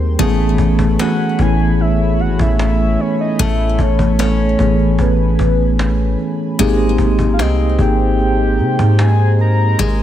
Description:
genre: contemporary R&B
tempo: 75 BPM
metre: 4/4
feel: straight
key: unclear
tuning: A4 = 439 Hz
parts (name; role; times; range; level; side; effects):
- mellow tine electric piano; accompaniment; 0.0-10.0 s; E3 to A4; -17 LUFS; equal; medium stereo tremolo
- chorused pulse-width pad; sustained chords; 0.0-10.0 s; Ab3 to C6; -26 LUFS; right 2 dB; none
- picked steel-string acoustic guitar; arpeggios; 0.0-10.0 s; Ab3 to C#4; -25 LUFS; left 6 dB; digital delay
- warm 808-style bass; bass; 0.0-10.0 s; G#1 to C3; -15 LUFS; equal; none
- cajon; drums; 0.2-10.0 s; none; -24 LUFS; equal; vintage 12-bit sampler grit
- soft octave-layered synth lead; melody; 1.0-10.0 s; B4 to Bb5; -21 LUFS; left 1 dB; chorus, phaser, digital delay
room: light reverb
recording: none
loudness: -12 LUFS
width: side -11 dB against mid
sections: 0.0-10.0 A section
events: none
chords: 0.2 Amaj9; 6.6 Abmaj9

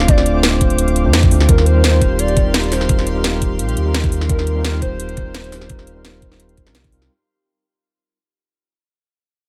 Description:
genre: liquid drum and bass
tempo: 171 BPM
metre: 4/4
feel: swing 53% on 16ths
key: unclear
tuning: A4 = 438 Hz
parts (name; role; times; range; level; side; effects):
- hollow clarinet-like synth lead; melody; 0.0-6.7 s; Bb4 to D5; -26 LUFS; equal; chorus, delay
- mellow tine electric piano; accompaniment; 0.0-7.1 s; G3 to C5; -24 LUFS; equal; tape echo
- airy breathy pad; sustained chords; 0.0-7.1 s; G4 to D6; -30 LUFS; equal; chorus, sidechain pumping
- sub bass with octave; bass; 0.0-7.1 s; D1 to F2; -19 LUFS; equal; none
- drum and bass drum kit; drums; 0.0-7.1 s; hi-hat, snare drum; -22 LUFS; equal; none
- electronic kick drum; drums; 0.1-6.9 s; none; -18 LUFS; equal; none
room: digital ambience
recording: none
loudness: -15 LUFS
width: mono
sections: 0.0-7.1 A section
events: drop 0.0-7.1; fade-out 1.5-7.1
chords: 0.0 Dm7; 1.5 Eb69

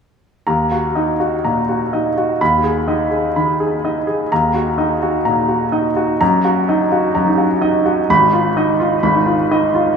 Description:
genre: classical, virtuoso piano study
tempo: 127 BPM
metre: 4/4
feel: rubato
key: Eb minor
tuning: A4 = 440 Hz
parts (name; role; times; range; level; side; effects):
- clear grand piano; solo; 0.5-10.0 s; Ab1 to Cb6; -14 LUFS; equal; none
room: wet huge ambient reverb, RT60 8.4 s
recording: in a vast, echoing space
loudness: -14 LUFS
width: side -6 dB against mid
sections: 0.5-10.0 A section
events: none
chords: 0.5 Ebm; 2.4 Abm/Eb; 4.3 Ebm; 6.2 Ebm/Gb; 8.1 Fm7b5/Ab

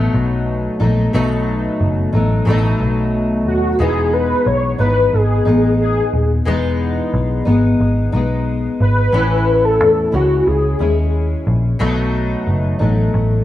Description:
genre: indie pop, bedroom pop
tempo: 90 BPM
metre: 4/4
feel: straight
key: E major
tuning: A4 = 440 Hz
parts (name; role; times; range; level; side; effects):
- fingerpicked steel-string acoustic guitar; accompaniment; 0.0-13.4 s; A2 to E4; -19 LUFS; left 2 dB; analog chorus, warbly pitch drift
- vintage muted picked electric bass; bass; 0.0-13.4 s; D#1 to E2; -17 LUFS; equal; none
- warm velvety synth lead; melody; 3.5-11.1 s; F#4 to C#5; -16 LUFS; left 1 dB; ensemble chorus
room: light reverb, small room ambience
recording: small room reverb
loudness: -14 LUFS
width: side -13 dB against mid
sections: 0.0-3.8 A section; 3.8-13.4 B section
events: none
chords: 0.0 B7; 3.8 Emaj7; 9.1 Amaj7; 11.8 B7

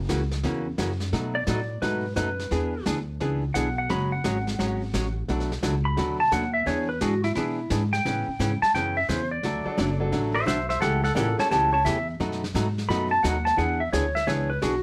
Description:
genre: country, western swing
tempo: 174 BPM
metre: 4/4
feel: swing 65% on 8ths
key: A major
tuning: A4 = 440 Hz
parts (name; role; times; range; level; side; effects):
- upright bass; bass; 0.0-14.8 s; F#1 to B2; -31 LUFS; equal; none
- archtop guitar, miked and amplified; accompaniment; 0.1-14.7 s; B2 to C#5; -31 LUFS; equal; none
- vintage brush drum kit; drums; 0.1-14.8 s; brushed snare drum, hi-hat, snare drum; -37 LUFS; equal; none
- clean lap steel guitar; second line; 1.4-14.8 s; E4 to B5; -28 LUFS; equal; none
- bright upright piano; accompaniment; 9.7-13.1 s; F#3 to Bb4; -34 LUFS; equal; none
room: moderate club reverb, RT60 0.6 s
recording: none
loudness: -25 LUFS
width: mono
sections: 0.0-14.8 A section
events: electric slide guitar solo 0.0-14.8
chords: 0.0 F#7; 1.1 B7; 2.5 E7; 3.9 F#sus2; 5.3 Bm7; 6.7 E7; 8.0 Aadd9; 9.4 D; 10.8 A7; 12.2 B7; 13.6 E7

